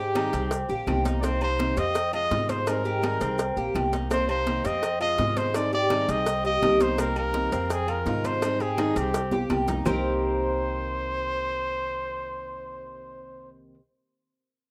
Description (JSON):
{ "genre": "latin, Cuban son and guajira", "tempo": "167 BPM", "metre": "4/4", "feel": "straight", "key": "C minor", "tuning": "A4 = 440 Hz", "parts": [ { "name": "warm trumpet", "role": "melody", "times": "0.0-13.5 s", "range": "G4 to Eb5", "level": "-30 LUFS", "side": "equal", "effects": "slapback echo, plate reverb" }, { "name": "picked steel-string acoustic guitar", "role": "accompaniment", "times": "0.0-13.8 s", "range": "C3 to Ab4", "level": "-34 LUFS", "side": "equal", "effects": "none" }, { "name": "Cuban tres", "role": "arpeggios", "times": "0.0-13.7 s", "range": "C4 to C5", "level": "-32 LUFS", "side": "equal", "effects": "none" }, { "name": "upright bass", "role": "bass", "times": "0.0-13.7 s", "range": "Bb1 to Ab2", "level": "-34 LUFS", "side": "equal", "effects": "none" }, { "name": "claves", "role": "percussion", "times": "0.2-9.9 s", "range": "none", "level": "-49 LUFS", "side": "equal", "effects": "none" }, { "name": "congas", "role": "percussion", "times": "0.2-9.9 s", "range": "none", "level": "-37 LUFS", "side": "equal", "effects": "none" }, { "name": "cowbell and bongos", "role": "percussion", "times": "0.2-9.9 s", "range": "none", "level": "-36 LUFS", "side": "equal", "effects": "none" }, { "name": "maracas", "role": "percussion", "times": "0.2-9.9 s", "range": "none", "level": "-50 LUFS", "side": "equal", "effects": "none" }, { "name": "timbales and agogo bells", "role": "percussion", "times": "0.2-9.9 s", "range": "none", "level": "-42 LUFS", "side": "equal", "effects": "none" } ], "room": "light reverb", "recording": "rough home demo mix", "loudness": "-26 LUFS", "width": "mono", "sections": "0.0-9.9 A section; 9.9-12.7 B section", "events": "drum fill 8.8-9.9", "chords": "0.0 Abmaj7; 0.5 Cm7; 2.0 Fm7; 2.7 Abmaj7; 3.4 Cm7; 4.8 Fm7; 5.5 Abmaj7; 6.3 Cm7; 7.7 Fm7; 8.4 Abmaj7; 9.1 Cm7", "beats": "0.16 0.52 0.88 | 1.24 1.59 1.95 2.31 | 2.67 3.03 3.39 3.75 | 4.11 4.47 4.83 5.19 | 5.55 5.91 6.27 6.62 | 6.99 7.34 7.70 8.06 | 8.42 8.78 9.14 9.50 | 9.86 10.22 10.58 10.94 | 11.30 11.66 12.02 12.37" }